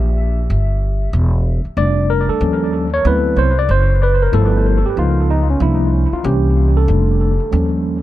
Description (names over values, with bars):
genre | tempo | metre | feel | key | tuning
hip hop, jazz-hop | 94 BPM | 4/4 | swing 61% on 16ths | unclear | A4 = 440 Hz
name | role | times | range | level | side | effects
tine electric piano | accompaniment | 0.0-8.0 s | E3 to E5 | -17 LUFS | equal | medium stereo tremolo, dub echo
upright bass | bass | 0.0-8.0 s | E1 to Eb2 | -15 LUFS | equal | none
room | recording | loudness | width
studio ambience | echo-heavy mix | -13 LUFS | side -14 dB against mid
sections
0.0-1.8 A section; 1.8-8.0 B section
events
tine electric piano solo 0.0-1.8, 1.8-8.0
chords
0.0 C7 (rootless); 1.8 F6; 2.4 Eb9; 3.0 D13; 4.3 G13; 5.0 Db9; 5.6 C9sus4; 6.2 C7b9; 6.9 F6; 7.5 Eb9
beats
0.49 1.13 | 1.77 2.41 3.05 3.69 | 4.33 4.96 5.60 6.24 | 6.88 7.52